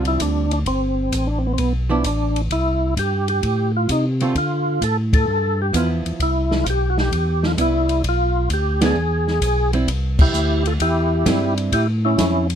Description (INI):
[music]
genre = soul jazz organ trio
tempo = 130 BPM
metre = 4/4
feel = swing 68% on 8ths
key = C major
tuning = A4 = 440 Hz
[part]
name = overdriven tonewheel organ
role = melody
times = 0.0-12.5 s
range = B3 to A4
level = -21 LUFS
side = equal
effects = slow rotary speaker, chorus vibrato
[part]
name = archtop guitar, miked and amplified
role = accompaniment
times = 0.0-11.7 s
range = D3 to Ab4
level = -22 LUFS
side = right 4 dB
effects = none
[part]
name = tonewheel organ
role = bass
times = 0.0-12.6 s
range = G1 to D3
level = -21 LUFS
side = equal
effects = overdrive, chorus vibrato, slow rotary speaker
[part]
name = open jazz drum kit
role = drums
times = 0.1-12.6 s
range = crash cymbal, hi-hat, kick drum, ride cymbal, snare drum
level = -23 LUFS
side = equal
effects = none
[sound]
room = light reverb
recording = none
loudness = -17 LUFS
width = side -8 dB against mid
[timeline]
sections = 0.0-9.9 A section; 9.9-12.6 B section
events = band accent 5.0, 8.7, 10.1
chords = 0.0 Dm7; 0.7 Gadd9; 2.5 C; 3.4 F13/A; 4.4 Dm; 5.3 G6; 6.2 Cmaj7; 8.0 Bdim; 9.0 E; 9.9 Cadd9; 11.7 A7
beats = 0.20 | 0.66 1.12 1.58 2.04 | 2.51 2.97 3.43 3.89 | 4.35 4.81 5.27 5.73 | 6.19 6.66 7.12 7.58 | 8.04 8.50 8.96 9.42 | 9.88 10.34 10.80 11.26 | 11.72 12.18